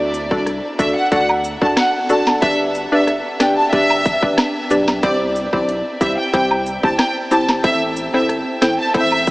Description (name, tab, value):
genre	dancehall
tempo	92 BPM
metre	4/4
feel	straight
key	unclear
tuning	A4 = 441 Hz
part	hollow square pluck	accompaniment	0.0-9.1 s	C4 to D5	-18 LUFS	equal	chorus
part	warm sub bass	bass	0.0-9.3 s	F#1 to E2	-33 LUFS	equal	none
part	island pop drum kit	drums	0.1-9.3 s	hi-hat, kick drum, rim click, snare drum	-22 LUFS	equal	vintage 12-bit sampler grit
part	cabasa and woodblock	percussion	0.1-9.3 s	none	-26 LUFS	equal	none
part	clear studio violin section	melody	0.3-9.3 s	D5 to A5	-18 LUFS	equal	diffuse ambient delay
room	wet huge ambient reverb, RT60 8.2 s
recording	dreamy mix soaked in reverb, small speaker sound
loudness	-14 LUFS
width	side -21 dB against mid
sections	0.0-9.3 A section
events	none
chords	0.0 D; 2.4 G; 5.0 C; 7.6 Am